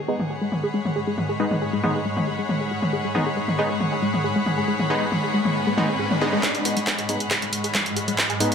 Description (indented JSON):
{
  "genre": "driving peak-time techno",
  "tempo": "137 BPM",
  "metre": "4/4",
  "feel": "straight",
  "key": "G# minor",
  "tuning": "A4 = 440 Hz",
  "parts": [
    { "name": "swarming drone", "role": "drone", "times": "0.2-8.5 s", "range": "G#2 to G#3", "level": "-29 LUFS", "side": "left 1 dB", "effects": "built-in reverb, lush chorus, sidechain pumping" },
    { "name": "warm chamber string section", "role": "texture", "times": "0.0-8.5 s", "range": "G#4 to B5", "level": "-28 LUFS", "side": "left 2 dB", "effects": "sidechain pumping" },
    { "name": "tight sequenced synth", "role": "riff", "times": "0.1-8.5 s", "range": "G#3 to G#4", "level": "-28 LUFS", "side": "left 1 dB", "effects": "chorus, phaser, overdrive, sidechain pumping, ping-pong delay" },
    { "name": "supersaw stab", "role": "stabs", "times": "0.1-8.5 s", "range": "G#3 to D#4", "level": "-27 LUFS", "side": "equal", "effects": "sidechain pumping, low-pass filter, ping-pong delay" },
    { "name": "punchy analog drum machine", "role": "drums", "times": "0.2-8.5 s", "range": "handclaps, hi-hat, toms", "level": "-26 LUFS", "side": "equal", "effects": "overdrive, sidechain pumping on hats, low-pass filter on hats, sidechain pumping on perc, low-pass filter on perc, sidechain pumping on toms, low-pass filter on toms, sidechain pumping on cymbals, low-pass filter on cymbals, low-pass filter on snare, low-pass filter on room, gated reverb" },
    { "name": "riser", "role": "sound effects", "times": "4.3-8.5 s", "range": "none", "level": "-32 LUFS", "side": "right 1 dB", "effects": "none" },
    { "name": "electronic kick drum", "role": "drums", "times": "6.4-8.3 s", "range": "none", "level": "-32 LUFS", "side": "equal", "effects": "overdrive, high-pass filter on kick, high-pass filter on room" }
  ],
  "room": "wet plate reverb, RT60 2.1 s",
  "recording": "bright 1980s-style digital production",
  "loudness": "-21 LUFS",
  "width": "side -7 dB against mid",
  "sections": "0.0-6.4 A section; 6.4-8.5 B section",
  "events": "filter sweep on supersaw synth 0.0-6.4, 6.4-8.5; riser 4.3-6.4, 6.4-8.5; build-up 6.4-8.5; drum fill 6.4-8.5; filter sweep on synth arpeggio sound 6.4-8.5",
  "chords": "0.0 G#m",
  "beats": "0.30 0.74 | 1.18 1.62 2.05 2.49 | 2.93 3.37 3.81 4.24 | 4.68 5.12 5.56 6.00 | 6.43 6.87 7.31 7.75 | 8.19"
}